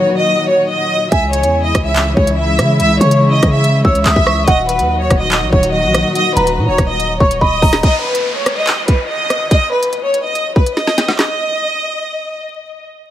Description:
hip hop, drill; 143 BPM; 4/4; half-time; Eb phrygian; A4 = 440 Hz
rich studio violin section; melody; 0.0-12.4 s; Cb5 to Fb5; -16 LUFS; equal; ping-pong delay
muted symphonic string section; sustained chords; 0.0-7.8 s; Bb2 to Gb4; -19 LUFS; left 1 dB
soft synth bell; second line; 1.1-7.8 s; Gb5 to Fb6; -19 LUFS; right 1 dB; chorus, ping-pong delay
hard-hitting 808-style bass; bass; 1.1-7.8 s; Eb1 to Db3; -17 LUFS; equal
drill drum kit; drums; 1.1-11.3 s; handclaps, hi-hat, kick drum, rim click, snare drum; -14 LUFS; equal
downlifter; sound effects; 7.8-11.2 s; -25 LUFS; equal
light reverb; vinyl crackle; -11 LUFS; side -12 dB against mid
0.0-7.8 A section; 7.8-11.2 B section; 11.2-13.1 C section
drum fill 7.4-7.8, 10.8-11.2
0.0 Ebm; 1.1 Dbm; 4.5 Ebm; 7.8 N.C.
0.28 0.70 | 1.12 1.54 1.96 2.38 | 2.80 3.22 3.64 4.06 | 4.48 4.89 5.32 5.74 | 6.15 6.57 6.99 7.41 | 7.83 8.25 8.67 9.09 | 9.51 9.93 10.35 10.77 | 11.19 11.61 12.03

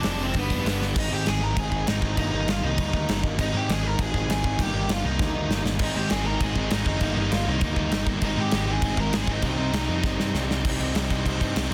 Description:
punk rock; 198 BPM; 4/4; straight; A4 = 439 Hz
bluesy overdriven lead guitar; melody; 0.0-10.3 s; B3 to Bb5; -32 LUFS; equal; distortion
distorted electric guitar; riff; 0.0-1.0, 5.8-11.7 s; F2 to Ab4; -34 LUFS; equal; overdrive
overdriven semi-hollow guitar; riff; 0.0-11.7 s; F2 to Eb4; -31 LUFS; equal
growling picked electric bass; bass; 0.0-11.7 s; F1 to Ab2; -31 LUFS; equal; overdrive
big rock drum kit; drums; 0.0-11.7 s; crash cymbal, hi-hat, kick drum, snare drum; -30 LUFS; equal
light reverb; dense, heavily limited modern master; -25 LUFS; mono
1.0-10.7 A section; 10.7-11.7 B section
drum fill 0.8, 5.2-5.8, 10.0-10.7
0.4 G; 1.0 Ab; 2.2 Eb/G; 3.4 Ab; 4.6 Eb/G; 5.8 Ab; 7.0 Eb/G; 8.2 Ab; 9.4 Cm
0.06 0.36 0.66 | 0.97 1.27 1.57 1.88 | 2.18 2.48 2.78 3.09 | 3.39 3.69 4.00 4.30 | 4.60 4.90 5.21 5.51 | 5.81 6.11 6.42 6.72 | 7.02 7.32 7.63 7.93 | 8.23 8.53 8.84 9.14 | 9.44 9.74 10.05 10.35 | 10.65 10.96 11.26 11.56

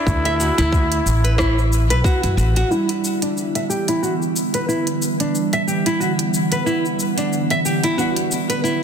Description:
organic downtempo; 91 BPM; 4/4; swing 57% on 16ths; E minor; A4 = 440 Hz
trumpet with bucket mute; melody; 0.0-2.3 s; E4; -26 LUFS; equal; tape echo, shimmer reverb
nylon-string guitar; arpeggios; 0.0-8.8 s; D4 to E5; -21 LUFS; equal; low-pass filter, ping-pong delay, shimmer reverb
upright bass; bass; 0.1-2.6 s; A1 to F#2; -18 LUFS; equal
electronic kick drum; drums; 0.1-2.2 s; -20 LUFS; equal
organic electronic drum kit; drums; 0.1-8.8 s; hi-hat, rim click, shaker; -27 LUFS; equal
felt-muted upright piano; accompaniment; 2.7-8.8 s; E3 to F#4; -27 LUFS; right 2 dB; sidechain pumping, low-pass filter, ping-pong delay, shimmer reverb
ethereal airy pad; sustained chords; 3.2-8.8 s; D3 to F#5; -22 LUFS; right 2 dB; ensemble chorus, built-in reverb, vintage 12-bit sampler grit, sidechain pumping, shimmer reverb
moderate echo chamber reverb, RT60 2.1 s; dense, heavily limited modern master; -17 LUFS; side -7 dB against mid
0.0-2.7 A section; 2.7-8.8 B section
filter sweep on nylon-string guitar 2.7-8.8; filter sweep on felt piano 2.7-8.8; filter sweep on ambient pad 2.7-8.8
0.0 Dadd9; 2.7 Em7; 8.0 D69
| 0.07 0.73 1.39 2.05 | 2.71 3.37 4.03 4.68 | 5.34 6.00 6.66 7.32 | 7.98 8.64

